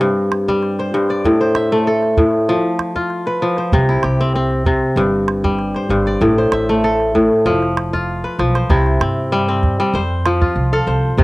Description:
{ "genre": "west african traditional, West African string and xylophone music", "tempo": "97 BPM", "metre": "4/4", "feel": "straight", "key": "C major", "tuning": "A4 = 442 Hz", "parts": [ { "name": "kora", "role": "arpeggios", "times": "0.0-11.2 s", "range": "G2 to F5", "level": "-15 LUFS", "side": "equal", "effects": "none" }, { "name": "calabash", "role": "percussion", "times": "0.0-11.2 s", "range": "none", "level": "-18 LUFS", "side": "right 2 dB", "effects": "none" }, { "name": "upright bass", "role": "bass", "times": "3.7-11.2 s", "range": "F1 to G2", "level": "-20 LUFS", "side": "equal", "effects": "none" } ], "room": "light reverb, small room ambience", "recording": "home recording on cassette", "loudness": "-14 LUFS", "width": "side -20 dB against mid", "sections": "0.0-8.7 A section; 8.7-11.2 B section", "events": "drum fill 8.2-8.7", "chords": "0.0 G5; 1.2 Am; 2.5 F5; 3.7 C; 5.0 G5; 6.2 Am; 7.5 F5; 8.7 C; 9.9 F", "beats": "0.01 0.63 | 1.25 1.87 2.49 3.11 | 3.73 4.35 4.97 5.59 | 6.21 6.83 7.46 8.08 | 8.70 9.32 9.94 10.56 | 11.19" }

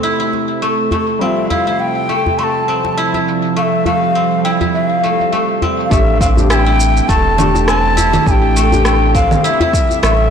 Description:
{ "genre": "organic downtempo", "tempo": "102 BPM", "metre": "4/4", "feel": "swing 56% on 16ths", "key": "A minor", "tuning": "A4 = 439 Hz", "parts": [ { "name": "felt-muted upright piano", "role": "accompaniment", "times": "0.0-10.3 s", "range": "F3 to G4", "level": "-22 LUFS", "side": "left 4 dB", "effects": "sidechain pumping, ping-pong delay" }, { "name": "bowed-like drone", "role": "sustained chords", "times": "0.0-10.3 s", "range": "C3 to A4", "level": "-21 LUFS", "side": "right 5 dB", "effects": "built-in reverb, sidechain pumping" }, { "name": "guzheng", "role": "arpeggios", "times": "0.0-10.3 s", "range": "A3 to E4", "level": "-18 LUFS", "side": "left 1 dB", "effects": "ping-pong delay" }, { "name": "electronic shaker, rim click and congas", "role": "drums", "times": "0.0-10.2 s", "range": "none", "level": "-21 LUFS", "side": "right 2 dB", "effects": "soft clipping on snare, low-pass filter on snare, low-pass filter on perc, low-pass filter on room" }, { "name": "djembe", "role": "percussion", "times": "0.3-10.0 s", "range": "none", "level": "-21 LUFS", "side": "left 2 dB", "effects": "none" }, { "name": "bright reedy bansuri", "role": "melody", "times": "1.2-10.3 s", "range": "E5 to C6", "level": "-17 LUFS", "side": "left 2 dB", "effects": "tape echo" }, { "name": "round analog bass", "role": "bass", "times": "5.9-10.3 s", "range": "E1 to A1", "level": "-15 LUFS", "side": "right 1 dB", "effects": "transformer saturation, sidechain pumping" }, { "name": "electronic kick drum", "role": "drums", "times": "5.9-9.9 s", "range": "none", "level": "-15 LUFS", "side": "right 1 dB", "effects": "none" } ], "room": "moderate echo chamber reverb, RT60 2.1 s", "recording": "blown-out, overdriven recording, overdrive", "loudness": "-11 LUFS", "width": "side -7 dB against mid", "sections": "0.0-5.9 A section; 5.9-10.3 B section", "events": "filter sweep on synth drone 0.0-5.9", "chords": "0.0 Am7; 1.2 G7sus4; 5.9 Am7", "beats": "0.03 0.62 | 1.21 1.80 2.38 2.97 | 3.56 4.15 4.74 5.33 | 5.92 6.50 7.09 7.68 | 8.27 8.86 9.44 10.03" }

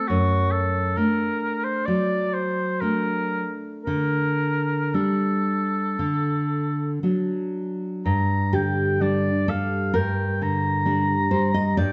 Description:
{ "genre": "romantic duo for oboe and classical guitar", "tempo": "53-68 BPM", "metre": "4/4", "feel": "rubato", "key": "G minor", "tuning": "A4 = 440 Hz", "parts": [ { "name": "clear oboe", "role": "melody", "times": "0.0-11.9 s", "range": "F#4 to Bb5", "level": "-28 LUFS", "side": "equal", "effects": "none" }, { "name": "nylon-string guitar", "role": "accompaniment", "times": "0.0-11.9 s", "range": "F#2 to Eb5", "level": "-25 LUFS", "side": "equal", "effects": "none" } ], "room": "moderate recital hall reverb, RT60 1.5 s", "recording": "dark, warm production, nothing above 7.9 kHz", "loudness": "-24 LUFS", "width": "mono", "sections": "0.0-8.1 A section; 8.1-11.9 B section", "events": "none", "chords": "0.1 D/F#; 3.9 Dsus4; 6.0 D; 8.1 Gm", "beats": "| 0.08 0.96 1.87 2.82 | 3.86 4.95 6.00 7.04 | 8.07 9.02 9.96 10.88 | 11.79" }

